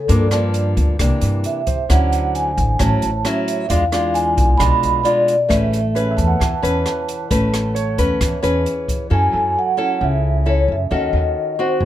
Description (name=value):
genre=bossa nova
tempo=133 BPM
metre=4/4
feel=straight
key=A major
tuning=A4 = 440 Hz
part: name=vibraphone with soft mallets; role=melody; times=0.0-11.8 s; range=A4 to B5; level=-20 LUFS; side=right 1 dB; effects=none
part: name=nylon-string guitar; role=accompaniment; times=0.0-11.8 s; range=G2 to B4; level=-21 LUFS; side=left 1 dB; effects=none
part: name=upright bass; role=bass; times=0.1-11.8 s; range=G#1 to G2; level=-19 LUFS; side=equal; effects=none
part: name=open jazz drum kit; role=drums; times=0.1-9.0 s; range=hi-hat, kick drum, rim click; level=-23 LUFS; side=equal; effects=none
part: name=warm concert grand piano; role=accompaniment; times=1.7-2.1, 5.9-11.8 s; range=F#4 to F#5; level=-30 LUFS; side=right 3 dB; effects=none
room=little or no reverb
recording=close, detailed microphones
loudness=-15 LUFS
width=side -12 dB against mid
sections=0.0-9.1 A section; 9.1-11.8 B section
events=none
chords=0.1 Gm7; 1.0 C9; 1.9 Dmaj9; 3.7 E7b9; 5.5 Amaj9; 9.1 F#m7; 10.9 D#m7b5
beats=| 0.09 0.54 0.99 1.45 | 1.90 2.35 2.80 3.25 | 3.70 4.15 4.60 5.05 | 5.50 5.96 6.41 6.86 | 7.31 7.76 8.21 8.66 | 9.11 9.56 10.01 10.46 | 10.91 11.36 11.81